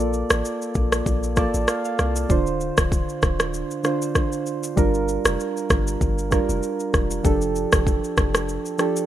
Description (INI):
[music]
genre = afrobeats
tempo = 97 BPM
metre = 4/4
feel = swing 55% on 16ths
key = D minor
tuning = A4 = 441 Hz
[part]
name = soft electric-piano-like synth keys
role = accompaniment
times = 0.0-9.1 s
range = D3 to A5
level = -24 LUFS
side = right 3 dB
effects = chorus
[part]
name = warm 808-style bass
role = bass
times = 0.0-8.6 s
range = D1 to C2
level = -26 LUFS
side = left 1 dB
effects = none
[part]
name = afro-pop drum kit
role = drums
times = 0.0-9.1 s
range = kick drum, rim click, shaker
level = -22 LUFS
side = equal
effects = vintage 12-bit sampler grit
[sound]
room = little or no reverb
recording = rough home demo mix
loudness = -20 LUFS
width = side -12 dB against mid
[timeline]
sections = 0.0-9.1 A section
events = synth keys fill 1.1-2.3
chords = 0.0 Bbmaj7; 2.3 Dm7; 4.8 Gm7; 7.2 F69